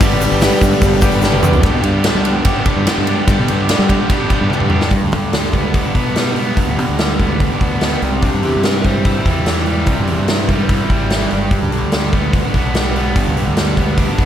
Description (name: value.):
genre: classic rock.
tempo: 146 BPM.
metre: 4/4.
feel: straight.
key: G major.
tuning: A4 = 440 Hz.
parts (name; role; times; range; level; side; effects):
smooth overdriven lead guitar; melody; 0.0-1.2 s; G3; -20 LUFS; left 2 dB; slapback echo.
clear upright piano; accompaniment; 0.0-1.6 s; B3 to B5; -24 LUFS; left 2 dB; none.
picked steel-string acoustic guitar; accompaniment; 0.0-4.9 s; G2 to G4; -25 LUFS; left 4 dB; none.
bright tonewheel organ; sustained chords; 0.0-1.6 s; B3 to G4; -28 LUFS; equal; none.
distorted electric guitar; riff; 0.0-14.3 s; G2 to G4; -18 LUFS; right 1 dB; distortion.
growling fingered electric bass; bass; 0.0-14.3 s; G1 to G3; -19 LUFS; equal; overdrive.
big rock drum kit; drums; 0.0-14.3 s; hi-hat, kick drum, ride cymbal, snare drum, toms; -16 LUFS; equal; none.
tube shaker; percussion; 0.0-1.6 s; none; -33 LUFS; right 7 dB; none.
overdriven slide guitar; second line; 8.2-9.3 s; D4 to C5; -23 LUFS; left 1 dB; none.
room: moderate lush hall reverb, RT60 2.1 s.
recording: big arena sound.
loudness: -13 LUFS.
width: side -10 dB against mid.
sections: 0.0-1.6 A section; 1.6-4.9 B section; 4.9-14.3 C section.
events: upright piano fill 0.4-1.6; drum fill 1.2-1.6, 4.5-4.9.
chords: 0.0 G; 8.0 C; 11.3 G.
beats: | 0.01 0.42 0.83 1.24 | 1.65 2.05 2.46 2.87 | 3.28 3.69 4.11 4.52 | 4.93 5.34 5.75 6.17 | 6.58 6.99 7.40 7.82 | 8.23 8.64 9.05 9.47 | 9.88 10.29 10.70 11.12 | 11.53 11.94 12.35 12.76 | 13.17 13.58 13.99.